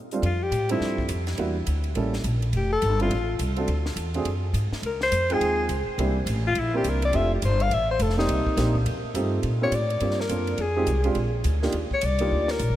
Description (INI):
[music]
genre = jazz, small-group swing and bop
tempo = 209 BPM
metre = 4/4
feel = swing 62% on 8ths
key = F major, Bb major from 9.4 s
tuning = A4 = 440 Hz
[part]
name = warm upright piano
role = accompaniment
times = 0.1-12.6 s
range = F3 to G5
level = -29 LUFS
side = right 3 dB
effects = none
[part]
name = compact cocktail drum kit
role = drums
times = 0.1-12.7 s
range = hi-hat, kick drum, ride cymbal, snare drum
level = -36 LUFS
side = right 1 dB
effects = none
[part]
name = upright bass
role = bass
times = 0.2-12.8 s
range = F1 to Bb2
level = -25 LUFS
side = equal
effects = none
[part]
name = breathy alto saxophone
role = melody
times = 0.3-12.8 s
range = Eb4 to F5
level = -27 LUFS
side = left 3 dB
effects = none
[sound]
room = moderate huge ambient reverb, RT60 5.0 s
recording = dreamy mix soaked in reverb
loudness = -22 LUFS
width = side -13 dB against mid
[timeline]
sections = 0.2-9.4 A section; 9.4-12.8 A section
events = alto saxophone solo 0.2-12.8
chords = 0.2 F69; 1.4 Em7b5; 2.0 A7b9; 2.5 Dm7; 3.7 D(#11); 4.8 Dbmaj9#11; 6.0 C9; 7.1 F69; 8.3 Cm7; 8.9 F9; 9.4 Bb69; 10.6 Fm7; 11.2 Bb6; 11.7 Ebmaj7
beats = | 0.23 0.52 0.81 1.09 | 1.38 1.67 1.96 2.25 | 2.54 2.82 3.11 3.40 | 3.69 3.97 4.26 4.55 | 4.84 5.12 5.41 5.70 | 5.99 6.27 6.56 6.85 | 7.14 7.42 7.71 8.00 | 8.29 8.57 8.86 9.15 | 9.44 9.72 10.01 10.30 | 10.59 10.87 11.16 11.45 | 11.74 12.03 12.31 12.60